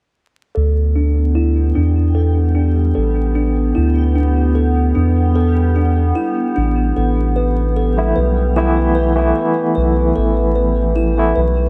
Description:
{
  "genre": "trip hop",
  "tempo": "75 BPM",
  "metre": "4/4",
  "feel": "straight",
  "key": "unclear",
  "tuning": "A4 = 440 Hz",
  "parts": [
    { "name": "music box", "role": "arpeggios", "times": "0.5-11.7 s", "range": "D4 to B4", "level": "-23 LUFS", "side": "equal", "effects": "vintage 12-bit sampler grit, low-pass filter, diffuse ambient delay" },
    { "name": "warbly tape-like pad", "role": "sustained chords", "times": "0.8-11.7 s", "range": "B3", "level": "-25 LUFS", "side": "equal", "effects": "chorus, built-in reverb" },
    { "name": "soft dub sub bass", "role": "bass", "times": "0.6-11.7 s", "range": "A1 to E2", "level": "-18 LUFS", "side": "equal", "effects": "none" },
    { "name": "backwards swelling texture", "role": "texture", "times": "1.6-11.7 s", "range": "G3 to G4", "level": "-33 LUFS", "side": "equal", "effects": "built-in reverb" },
    { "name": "barky tine electric piano", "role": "accompaniment", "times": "8.0-11.4 s", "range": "E3 to E4", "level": "-20 LUFS", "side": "equal", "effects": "tremolo, tape echo" }
  ],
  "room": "moderate plate reverb, RT60 2.9 s",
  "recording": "dreamy mix soaked in reverb, vinyl crackle",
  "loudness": "-16 LUFS",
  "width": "mono",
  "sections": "0.6-11.7 A section",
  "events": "none",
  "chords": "0.6 Dsus2; 7.0 Asus2"
}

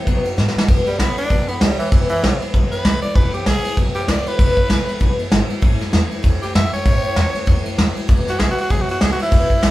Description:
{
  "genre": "rockabilly",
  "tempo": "195 BPM",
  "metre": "4/4",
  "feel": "swing 58% on 8ths",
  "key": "E major",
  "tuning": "A4 = 440 Hz",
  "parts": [
    { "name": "picked steel-string acoustic guitar", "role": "accompaniment", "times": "0.0-9.7 s", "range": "E2 to F#4", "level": "-26 LUFS", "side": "left 2 dB", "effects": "none" },
    { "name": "upright bass", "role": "bass", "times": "0.1-9.7 s", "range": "E1 to G#2", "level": "-22 LUFS", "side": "equal", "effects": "none" },
    { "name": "soft brush drum kit", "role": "drums", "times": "0.1-9.7 s", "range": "kick drum, ride cymbal, snare drum", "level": "-17 LUFS", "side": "equal", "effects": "none" },
    { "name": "raspy tenor saxophone", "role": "melody", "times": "0.9-9.7 s", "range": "E3 to E5", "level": "-22 LUFS", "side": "equal", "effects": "none" }
  ],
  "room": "light reverb",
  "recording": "band playing live in one room",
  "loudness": "-15 LUFS",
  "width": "side -16 dB against mid",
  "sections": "0.7-9.7 A section",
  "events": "drum fill 0.4-0.7",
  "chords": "0.1 B; 0.7 E; 5.6 A; 8.1 E"
}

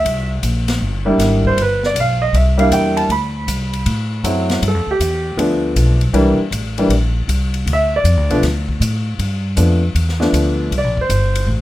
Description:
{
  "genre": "jazz piano trio",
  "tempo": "158 BPM",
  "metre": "4/4",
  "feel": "swing 66% on 8ths",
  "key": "G mixolydian",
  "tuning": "A4 = 436 Hz",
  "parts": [
    { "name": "warm grand piano", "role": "melody", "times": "0.0-11.5 s", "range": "E3 to B5", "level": "-17 LUFS", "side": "equal", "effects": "plate reverb" },
    { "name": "upright bass", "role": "bass", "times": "0.0-11.6 s", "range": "G1 to A2", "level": "-17 LUFS", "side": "equal", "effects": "none" },
    { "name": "swinging big-band drum kit", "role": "drums", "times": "0.1-11.4 s", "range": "hi-hat, kick drum, ride cymbal, snare drum", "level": "-26 LUFS", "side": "left 3 dB", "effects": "none" }
  ],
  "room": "little or no reverb",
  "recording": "close, detailed microphones",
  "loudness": "-14 LUFS",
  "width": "side -15 dB against mid",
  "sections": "0.0-4.6 A section; 4.6-11.6 B section",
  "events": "grand piano solo 4.6-11.6",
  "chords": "0.1 C7; 1.6 G; 2.3 C7; 3.1 D7; 4.6 G7; 6.1 C7; 7.7 G7; 10.7 C7(no3)"
}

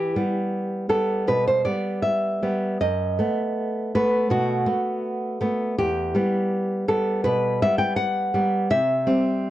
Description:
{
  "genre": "romantic piece for solo classical guitar",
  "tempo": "81 BPM",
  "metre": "4/4",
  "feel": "rubato",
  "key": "E minor",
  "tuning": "A4 = 440 Hz",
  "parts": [
    { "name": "nylon-string guitar", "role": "solo", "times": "0.0-9.5 s", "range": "E2 to G5", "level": "-21 LUFS", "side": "equal", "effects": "none" }
  ],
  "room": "wet studio reverb, RT60 0.5 s",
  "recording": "cassette tape",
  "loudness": "-21 LUFS",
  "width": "side -14 dB against mid",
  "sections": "0.0-9.5 A section",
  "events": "none",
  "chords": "0.0 Em; 2.8 B7/F#; 5.8 Em; 8.7 C"
}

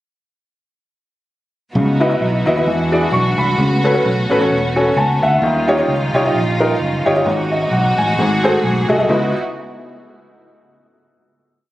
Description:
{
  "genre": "uptempo gospel",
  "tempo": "131 BPM",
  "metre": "4/4",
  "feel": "swing 56% on 8ths",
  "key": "C# minor",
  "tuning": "A4 = 440 Hz",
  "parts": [
    { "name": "warm studio string section", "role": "sustained chords", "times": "1.7-9.3 s", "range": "G3 to G#4", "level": "-21 LUFS", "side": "right 1 dB", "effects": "none" },
    { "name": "warm upright piano", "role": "accompaniment", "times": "1.8-9.3 s", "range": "C#2 to C#6", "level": "-16 LUFS", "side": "left 1 dB", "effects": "none" },
    { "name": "fingered electric bass", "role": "bass", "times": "1.8-9.3 s", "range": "E1 to E2", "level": "-20 LUFS", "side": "equal", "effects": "none" }
  ],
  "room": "light reverb",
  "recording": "recorded on a phone in the room, studio reverb, compression",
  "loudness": "-13 LUFS",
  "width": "side -15 dB against mid",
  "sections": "1.8-9.1 breakdown; 9.1-10.9 final chord",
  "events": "upright piano fill 4.5-5.4",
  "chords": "1.8 C#m11; 2.7 E9; 3.6 A69; 5.4 D#9; 7.3 G#7sus4; 8.2 G#7b9; 9.1 C#m11"
}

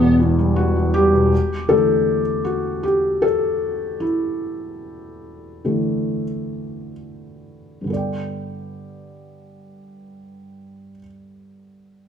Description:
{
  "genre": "pop",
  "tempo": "63-80 BPM",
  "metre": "4/4",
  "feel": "straight",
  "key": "G major",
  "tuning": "A4 = 439 Hz",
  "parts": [
    { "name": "felt-muted upright piano", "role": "accompaniment", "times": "0.0-12.1 s", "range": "E1 to G5", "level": "-19 LUFS", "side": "left 1 dB", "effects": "none" }
  ],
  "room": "moderate large studio reverb, RT60 1.1 s",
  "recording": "band playing live in one room",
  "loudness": "-17 LUFS",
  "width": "side -8 dB against mid",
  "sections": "0.0-1.3 A section; 1.3-7.9 B section; 7.9-11.7 C section",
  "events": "slowing down 1.3-7.9; felt piano solo 1.3-7.9",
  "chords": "0.0 Em; 1.3 Dsus2; 7.9 Gadd9"
}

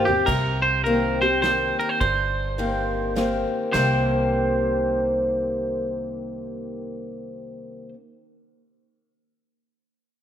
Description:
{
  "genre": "honky-tonk and classic country",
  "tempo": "104 BPM",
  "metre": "3/4",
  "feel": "swing 64% on 8ths",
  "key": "C minor",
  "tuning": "A4 = 440 Hz",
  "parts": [
    { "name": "twangy electric guitar", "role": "melody", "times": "0.0-7.9 s", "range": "G4 to C5", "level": "-24 LUFS", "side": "right 2 dB", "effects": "none" },
    { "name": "picked acoustic archtop guitar", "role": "accompaniment", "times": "0.0-8.0 s", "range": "G2 to G4", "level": "-24 LUFS", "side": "left 1 dB", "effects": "none" },
    { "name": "unplugged drum kit", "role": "drums", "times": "0.1-3.9 s", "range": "china cymbal, crash cymbal, kick drum, ride cymbal, snare drum, toms", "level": "-33 LUFS", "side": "equal", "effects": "none" },
    { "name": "upright bass", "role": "bass", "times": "0.3-7.9 s", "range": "G1 to C2", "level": "-29 LUFS", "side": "equal", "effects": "none" }
  ],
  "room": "moderate lush hall reverb, RT60 2.3 s",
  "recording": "rough home demo mix",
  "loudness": "-20 LUFS",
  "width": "side -9 dB against mid",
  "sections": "0.3-3.7 A section; 3.7-7.2 B section",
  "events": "drum fill 0.0",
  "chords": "0.3 Cm7"
}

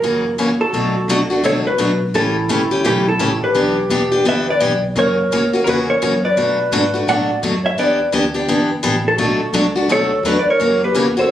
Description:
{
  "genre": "acoustic string swing (jazz manouche)",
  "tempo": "170 BPM",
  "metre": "4/4",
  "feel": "swing 61% on 8ths",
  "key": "B minor",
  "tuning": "A4 = 440 Hz",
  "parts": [
    { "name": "hollow-body jazz guitar", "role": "melody", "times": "0.0-11.3 s", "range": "G4 to F#5", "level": "-19 LUFS", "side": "left 1 dB", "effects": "none" },
    { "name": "picked steel-string acoustic guitar", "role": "accompaniment", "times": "0.0-11.3 s", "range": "B2 to G4", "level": "-17 LUFS", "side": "left 2 dB", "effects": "none" },
    { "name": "upright bass", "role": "bass", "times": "0.0-11.3 s", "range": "E1 to B2", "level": "-25 LUFS", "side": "equal", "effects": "none" },
    { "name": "breathy clarinet", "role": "second line", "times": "0.6-11.3 s", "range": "E4 to D5", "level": "-22 LUFS", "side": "right 4 dB", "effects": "none" }
  ],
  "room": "light reverb",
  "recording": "recorded on a phone in the room, club reverb, compression",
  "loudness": "-14 LUFS",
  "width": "side -11 dB against mid",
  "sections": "0.7-11.3 A section",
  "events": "none",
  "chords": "0.0 F#7; 0.7 Bm7; 2.1 A7; 3.6 Em7; 5.0 F#7; 6.4 Bm7; 7.8 Em7; 9.2 Bm11; 10.6 F#7b9"
}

